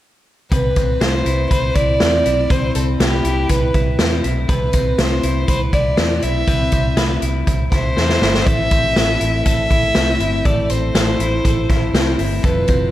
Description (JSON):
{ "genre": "jangly indie pop", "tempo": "121 BPM", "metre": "4/4", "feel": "straight", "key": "C major", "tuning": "A4 = 440 Hz", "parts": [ { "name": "warm violin", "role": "melody", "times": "0.5-12.9 s", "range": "G4 to E5", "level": "-20 LUFS", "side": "equal", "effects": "none" }, { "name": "twelve-string electric guitar", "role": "arpeggios", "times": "0.5-12.9 s", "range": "A2 to B4", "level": "-23 LUFS", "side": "left 2 dB", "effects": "spring reverb, slapback echo" }, { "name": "vintage muted fingered electric bass", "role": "bass", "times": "0.5-12.9 s", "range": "F1 to E2", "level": "-20 LUFS", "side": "equal", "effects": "none" }, { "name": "vintage drum kit", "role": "drums", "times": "0.5-12.8 s", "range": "hi-hat, kick drum, snare drum", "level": "-18 LUFS", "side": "equal", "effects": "none" } ], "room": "moderate lush hall reverb, RT60 1.8 s, small room ambience", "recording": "big arena sound", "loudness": "-14 LUFS", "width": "side -14 dB against mid", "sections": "0.5-12.9 A section", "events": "drum fill 8.0-8.5", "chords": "0.5 Cmaj7; 8.5 Am", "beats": "| 0.51 1.01 1.51 2.00 | 2.50 3.00 3.50 3.99 | 4.49 4.99 5.48 5.98 | 6.48 6.97 7.47 7.97 | 8.46 8.96 9.46 9.96 | 10.45 10.95 11.45 11.94 | 12.44" }